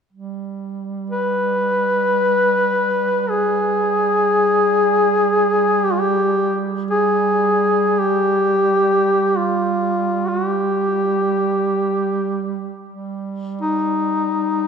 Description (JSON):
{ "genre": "caucasian folk, Caucasian lament", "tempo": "free time", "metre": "none", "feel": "none", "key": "G phrygian dominant", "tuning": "A4 = 440 Hz", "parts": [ { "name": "mellow duduk", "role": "drone", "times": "0.1-14.7 s", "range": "G3", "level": "-24 LUFS", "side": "right 9 dB", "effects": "none" }, { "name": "warm duduk", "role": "melody", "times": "1.1-14.7 s", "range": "Eb4 to B4", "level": "-16 LUFS", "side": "left 2 dB", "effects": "none" } ], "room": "wet church reverb, RT60 3.3 s", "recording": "minimal, uncompressed stereo recording", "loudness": "-16 LUFS", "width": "side -6 dB against mid", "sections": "0.1-14.7 A section", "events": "none", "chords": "none" }